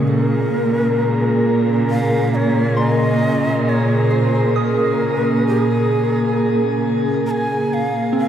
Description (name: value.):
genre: ambient.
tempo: 67 BPM.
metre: 3/4.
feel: straight.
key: Bb minor.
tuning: A4 = 441 Hz.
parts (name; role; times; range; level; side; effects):
breathy shakuhachi; melody; 0.0-8.3 s; Ab4 to Bb5; -24 LUFS; equal; tape echo.
evolving wavetable pad; sustained chords; 0.0-8.3 s; Bb2 to Bb4; -18 LUFS; right 1 dB; chorus, built-in reverb.
soft synth bell; arpeggios; 0.0-8.3 s; Ab3 to Eb6; -30 LUFS; equal; chorus, phaser, tape echo.
rich studio cello section; bass; 0.0-8.3 s; Bb2; -21 LUFS; equal; none.
overtone-sweeping drone; drone; 0.0-8.3 s; Bb3; -24 LUFS; equal; chorus, built-in reverb.
room: wet shimmer reverb, RT60 7.4 s.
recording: dark, warm production.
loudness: -15 LUFS.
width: side -9 dB against mid.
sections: 0.0-8.3 A section.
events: fade-in on synth bell 0.0-8.3; fade-in on shakuhachi 0.0-8.3.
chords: 0.0 Bbm7.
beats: | 0.07 0.97 1.86 | 2.76 3.66 4.55 | 5.45 6.34 7.24 | 8.13.